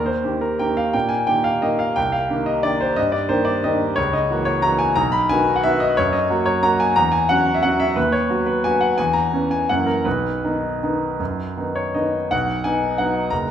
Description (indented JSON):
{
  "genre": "classical, piano waltz",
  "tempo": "154-194 BPM",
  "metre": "3/4",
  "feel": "rubato",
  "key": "B major from 4.0 s",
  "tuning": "A4 = 439 Hz",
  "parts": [
    { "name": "clear grand piano", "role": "solo", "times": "0.0-13.5 s", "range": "F#1 to B5", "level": "-17 LUFS", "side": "equal", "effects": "none" }
  ],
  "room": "wet recital hall reverb, RT60 1.3 s",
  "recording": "minimal, uncompressed stereo recording",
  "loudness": "-17 LUFS",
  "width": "side -9 dB against mid",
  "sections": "0.0-12.3 A section; 12.3-13.5 B section",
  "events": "none",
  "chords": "0.0 Eb; 2.0 Cm7; 4.0 F#7/C#; 5.0 B; 6.0 F#; 7.0 F#5/E; 8.0 B/D#; 9.0 C#m7/E; 9.7 F#7; 10.1 B"
}